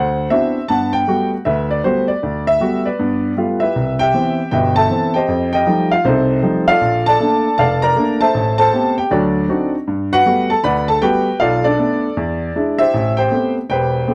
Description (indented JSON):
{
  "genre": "solo jazz",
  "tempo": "157 BPM",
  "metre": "4/4",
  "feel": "swing 63% on 8ths",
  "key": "G major",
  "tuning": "A4 = 441 Hz",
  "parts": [
    { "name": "warm upright piano", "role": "solo", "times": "0.0-14.1 s", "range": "E1 to B5", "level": "-16 LUFS", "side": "equal", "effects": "none" }
  ],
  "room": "moderate club reverb, RT60 0.6 s",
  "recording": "none",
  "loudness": "-16 LUFS",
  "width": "mono",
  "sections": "0.0-3.7 A section; 3.7-14.1 B section",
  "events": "none",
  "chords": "0.0 D13; 0.7 Gmaj9; 3.0 G9; 3.7 Cmaj7; 5.3 F9; 6.8 Bbmaj7; 8.3 Am9; 9.1 D7b9; 9.9 Gmaj9; 11.4 Bm7b5; 12.2 E7; 12.9 Am9"
}